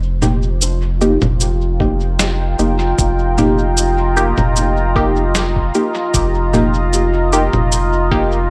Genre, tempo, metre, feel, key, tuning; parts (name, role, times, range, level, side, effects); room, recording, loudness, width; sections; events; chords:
ambient dub; 76 BPM; 4/4; swing 53% on 16ths; A4 = 440 Hz
deep dark ambient pad; sustained chords; 0.5-8.5 s; F4 to Bb5; -22 LUFS; equal; chorus, built-in reverb
soft dub sub bass; bass; 0.0-8.5 s; F1; -20 LUFS; equal
filtered dub chord stab; stabs; 0.2-8.4 s; Bb3 to G4; -21 LUFS; equal; phaser, dub echo
electronic congas, cabasa and snare drum; drums; 0.2-7.9 s; -22 LUFS; equal; dub echo
electronic kick drum; drums; 1.8-8.3 s; -22 LUFS; equal
moderate spring reverb, RT60 2.7 s; -15 LUFS; mono
0.0-8.5 A section
0.0 F9sus4